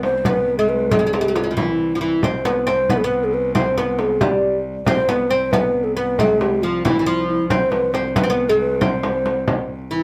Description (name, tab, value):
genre	Persian modal ensemble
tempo	91 BPM (dotted quarters)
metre	6/8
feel	straight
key	C dastgah chahargah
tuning	A4 = 440 Hz
part	breathy mellow ney	melody	0.0-10.0 s	E4 to C5	-22 LUFS	equal	none
part	oud	second line	0.0-10.0 s	Db3+45c to C4	-25 LUFS	equal	none
part	clear cello	drone	0.0-10.0 s	C2	-31 LUFS	equal	none
part	frame drum	percussion	0.0-9.6 s	none	-24 LUFS	equal	none
room	light reverb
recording	none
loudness	-19 LUFS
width	mono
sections	0.0-10.0 A section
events	none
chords	none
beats	0.26 | 0.92 1.57 | 2.23 2.89 | 3.55 4.21 | 4.87 5.52 | 6.18 6.84 | 7.50 8.15 | 8.81 9.47